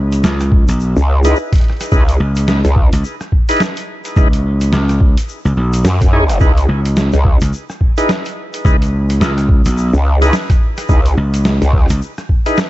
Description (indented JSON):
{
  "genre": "glitch hop",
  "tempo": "107 BPM",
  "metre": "4/4",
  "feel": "swing 59% on 16ths",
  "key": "C# minor",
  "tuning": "A4 = 436 Hz",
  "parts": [
    { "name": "gritty slap bass", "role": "bass", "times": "0.0-12.0 s", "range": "B1 to C#2", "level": "-14 LUFS", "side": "equal", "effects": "overdrive" },
    { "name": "boom bap sampler-style drum kit", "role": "drums", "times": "0.1-12.7 s", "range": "hi-hat, rim click, snare drum", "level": "-21 LUFS", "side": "equal", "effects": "none" },
    { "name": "tube shaker", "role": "percussion", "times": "0.1-12.7 s", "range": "none", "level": "-35 LUFS", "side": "left 5 dB", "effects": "none" },
    { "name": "electronic kick drum", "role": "drums", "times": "0.5-12.4 s", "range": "none", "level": "-12 LUFS", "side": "equal", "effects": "none" },
    { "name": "growl bass", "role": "bass", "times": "1.0-11.9 s", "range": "C#2 to F#2", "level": "-12 LUFS", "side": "equal", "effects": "chorus, overdrive" },
    { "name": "overdriven tonewheel organ", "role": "stabs", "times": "1.2-12.6 s", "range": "D#4 to C#5", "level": "-20 LUFS", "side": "equal", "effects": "slow rotary speaker, sidechain pumping, diffuse ambient delay" }
  ],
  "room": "little or no reverb",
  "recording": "nothing above 8.0 kHz",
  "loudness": "-11 LUFS",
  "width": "side -16 dB against mid",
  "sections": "0.0-12.7 A section",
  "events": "none",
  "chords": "0.0 C#m7",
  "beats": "0.24 0.80 1.36 | 1.92 2.48 3.04 3.60 | 4.16 4.72 5.29 5.84 | 6.41 6.97 7.53 8.09 | 8.65 9.21 9.77 10.33 | 10.89 11.45 12.01 12.57"
}